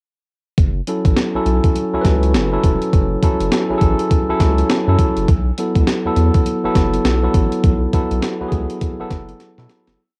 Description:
R&B, new jack swing; 102 BPM; 4/4; swing 61% on 16ths; F# minor; A4 = 440 Hz
round analog bass; bass; 0.6-10.0 s; E1 to B2; -21 LUFS; equal
breakbeat sampler-style drum kit; drums; 0.6-10.0 s; hi-hat, kick drum, snare drum; -19 LUFS; equal; overdrive, cassette tape
barky tine electric piano; accompaniment; 0.9-10.0 s; F#3 to B4; -21 LUFS; equal; cassette tape
light reverb, digital ambience; home recording on cassette; -17 LUFS; mono
0.6-10.0 verse
fade-out 7.6-10.0; drum fill 9.4-10.0
0.6 F#m7; 5.3 B7sus4
| 0.58 1.17 1.75 2.34 | 2.93 3.52 4.11 4.70 | 5.28 5.87 6.46 7.05 | 7.64 8.22 8.81 9.40

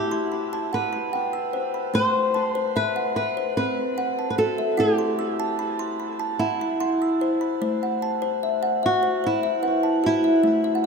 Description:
world meditative, meditative tuned percussion; 148 BPM (eighths); 7/8; straight; A kumoi; A4 = 438 Hz
flamenco guitar; melody; 0.0-10.9 s; E4 to C5; -24 LUFS; equal; shimmer reverb, ping-pong delay
kalimba; arpeggios; 0.0-10.9 s; A3 to E6; -24 LUFS; left 1 dB; shimmer reverb, ping-pong delay
wet recital hall reverb, RT60 1.6 s, studio reverb; -21 LUFS; side -5 dB against mid
0.0-10.9 A section
kalimba fill 10.6
0.0 Em/A; 1.9 Am
0.32 0.73 1.13 1.54 | 1.94 2.35 2.75 3.16 3.56 3.97 4.38 | 4.78 5.19 5.59 6.00 6.40 6.80 7.21 | 7.61 8.02 8.42 8.83 9.23 9.64 10.04 | 10.45 10.85

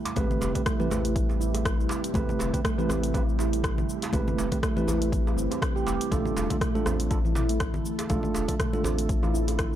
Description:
afro house; 121 BPM; 4/4; swing 56% on 16ths; A minor; A4 = 440 Hz
ethereal airy pad; sustained chords; 0.0-9.8 s; C3 to A4; -34 LUFS; equal; ensemble chorus, built-in reverb, phaser, sidechain pumping
deep house drum kit; drums; 0.1-9.8 s; hi-hat, rim click, shaker, toms; -34 LUFS; left 1 dB
djembe; percussion; 0.1-9.6 s; -37 LUFS; right 3 dB
handpan; arpeggios; 0.2-9.5 s; E3 to G4; -31 LUFS; right 3 dB; sidechain pumping, analog delay
mellow tine electric piano; stabs; 0.2-9.8 s; C4 to B4; -34 LUFS; right 4 dB; sidechain pumping, analog delay
round analog bass; bass; 0.2-9.8 s; E1 to A1; -30 LUFS; left 1 dB; tube saturation, sidechain pumping
electronic kick drum; drums; 0.2-9.7 s; -29 LUFS; left 1 dB
congas; percussion; 0.2-9.0 s; -35 LUFS; left 3 dB
digital ambience; dry, gritty hardware recording; -24 LUFS; side -11 dB against mid
0.0-9.8 A section
0.0 Am7; 6.1 Dm
| 0.17 0.66 1.16 1.65 | 2.15 2.65 3.14 3.64 | 4.13 4.63 5.12 5.62 | 6.12 6.61 7.11 7.61 | 8.10 8.60 9.09 9.59

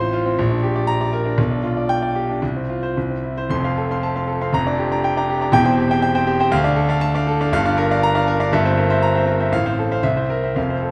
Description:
classical, virtuoso piano study; 119 BPM; 2/4; rubato; F major; A4 = 440 Hz
clear grand piano; solo; 0.0-10.9 s; E1 to C6; -19 LUFS; equal
wet recital hall reverb, RT60 1.5 s; -19 LUFS; mono
0.0-3.5 A section; 3.5-10.9 B section
0.4 Gm/Bb; 1.4 G7/B; 2.4 F5/C; 3.0 C; 3.5 F; 4.5 Gm7/F; 5.5 C/E; 6.5 Dm; 7.5 Gm7; 8.5 C7/G; 9.5 F/A; 10.0 C7
| 0.38 0.88 | 1.38 1.89 | 2.42 2.96 | 3.50 4.02 | 4.53 5.04 | 5.54 6.04 | 6.53 7.03 | 7.53 8.02 | 8.52 9.02 | 9.52 10.04 | 10.57

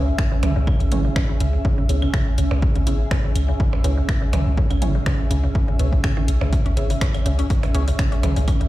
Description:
minimal techno; 123 BPM; 4/4; swing 54% on 16ths; C# minor; A4 = 441 Hz
punchy sub bass; bass; 0.0-8.7 s; G#1 to C#2; -20 LUFS; equal; sidechain pumping
granular cloud pad; texture; 0.0-8.7 s; C#4 to E5; -29 LUFS; right 2 dB; built-in reverb, sidechain pumping
mallet-like synth pluck; riff; 0.2-8.6 s; B2 to C#4; -29 LUFS; equal; chorus, phaser, sidechain pumping, digital delay
electronic kick drum; drums; 0.2-8.6 s; -21 LUFS; equal
house drum kit; drums; 0.2-8.7 s; finger snaps, hi-hat; -32 LUFS; left 1 dB
electronic toms, percussion blips and claves; percussion; 0.4-8.6 s; -30 LUFS; right 3 dB; ping-pong delay
filtered dub chord stab; stabs; 0.9-7.8 s; B3 to C#5; -34 LUFS; equal; phaser, ping-pong delay
light reverb; played on a big sound system in a bare room, large studio reverb; -17 LUFS; side -16 dB against mid
0.0-8.7 A section
0.0 C#m
0.18 | 0.67 1.16 1.65 2.14 | 2.62 3.11 3.60 4.09 | 4.58 5.06 5.55 6.04 | 6.53 7.01 7.50 7.99 | 8.48

